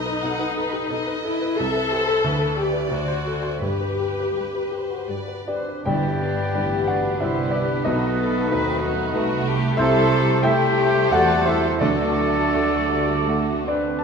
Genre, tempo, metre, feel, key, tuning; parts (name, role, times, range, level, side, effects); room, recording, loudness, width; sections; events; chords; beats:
classical, romantic movement for piano and orchestra; 72-94 BPM; 3/4; rubato; G major; A4 = 441 Hz
clear baby grand piano; melody; 0.0-14.0 s; G1 to A5; -25 LUFS; equal
rich chamber violin section; melody; 0.0-13.8 s; D#4 to D5; -35 LUFS; left 4 dB
rich chamber violin section; second line; 0.0-13.8 s; A3 to F#5; -31 LUFS; left 3 dB
rich chamber viola section; accompaniment; 0.0-14.0 s; F#3 to A4; -27 LUFS; left 3 dB
rich chamber cello section; bass; 0.0-13.6 s; G2 to B4; -31 LUFS; left 1 dB
timpani; percussion; 3.6-6.8, 11.8-12.9 s; G2 to D3; -31 LUFS; right 1 dB
silver concert flute; second line; 5.5-14.0 s; A4 to E5; -29 LUFS; left 1 dB
clear French horn section; sustained chords; 5.5-14.0 s; D4 to G4; -27 LUFS; equal
mellow trumpet section; stabs; 5.5-14.0 s; D5 to G5; -28 LUFS; right 1 dB
dark clarinet; second line; 5.9-13.6 s; F#4 to G4; -32 LUFS; left 2 dB
warm oboe; second line; 5.9-13.6 s; B4 to D5; -31 LUFS; right 2 dB
mellow bassoon; accompaniment; 5.9-13.6 s; G3 to A3; -30 LUFS; right 2 dB
clear chamber double bass section; bass; 5.9-13.8 s; G1 to E2; -27 LUFS; right 4 dB
wet recital hall reverb, RT60 1.5 s; -19 LUFS; side -6 dB against mid
0.0-5.9 A section; 5.9-14.0 A section
0.0 B7; 1.6 Cmaj7; 2.2 G/D; 2.9 D7; 3.6 G; 7.9 B7; 9.8 C6; 11.8 D
0.23 0.89 | 1.58 2.24 2.90 | 3.61 4.35 5.08 | 5.87 6.55 7.21 | 7.86 8.51 9.14 | 9.79 10.45 11.12 | 11.81 12.55 13.28